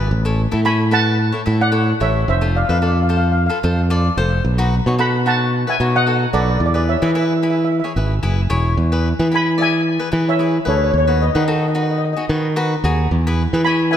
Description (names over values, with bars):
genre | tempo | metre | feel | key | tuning
calypso | 111 BPM | 4/4 | swing 54% on 16ths | A major | A4 = 439 Hz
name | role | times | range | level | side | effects
cavaquinho | accompaniment | 0.0-14.0 s | D#4 to E5 | -24 LUFS | left 2 dB | none
modern bright fingered electric bass | bass | 0.0-14.0 s | E1 to E3 | -16 LUFS | equal | none
steel pan | melody | 0.7-14.0 s | A4 to B5 | -20 LUFS | equal | digital delay
room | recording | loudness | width
moderate scoring stage reverb, RT60 1.6 s | none | -15 LUFS | side -10 dB against mid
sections
0.1-14.0 A section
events
none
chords
0.1 A; 2.3 F; 4.4 B7; 6.6 E; 8.8 E7; 10.9 B/D#; 13.1 E